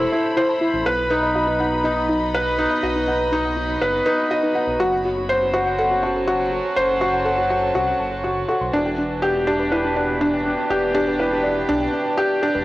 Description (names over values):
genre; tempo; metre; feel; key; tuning
piano and strings electronica; 122 BPM; 4/4; straight; E minor; A4 = 440 Hz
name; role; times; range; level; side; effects
warm chamber string section; sustained chords; 0.0-12.6 s; E3 to B5; -27 LUFS; equal; none
soft round pluck; arpeggios; 0.0-12.6 s; D4 to F#6; -26 LUFS; left 1 dB; chorus, tape echo
felt-muted upright piano; riff; 0.0-12.6 s; D4 to F#5; -19 LUFS; equal; tape echo
dark detuned saw bass; bass; 0.0-12.6 s; E1 to C2; -31 LUFS; equal; none
room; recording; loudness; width
moderate spring reverb, RT60 1.1 s, small room ambience; home recording on cassette; -18 LUFS; side -17 dB against mid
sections
0.0-12.6 A section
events
none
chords
0.0 Am; 0.9 B; 4.8 F#dim; 8.7 Em7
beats
0.37 | 0.86 1.36 1.85 2.34 | 2.83 3.32 3.81 4.31 | 4.80 5.29 5.78 6.27 | 6.77 7.26 7.75 8.24 | 8.73 9.22 9.72 10.21 | 10.70 11.19 11.68 12.18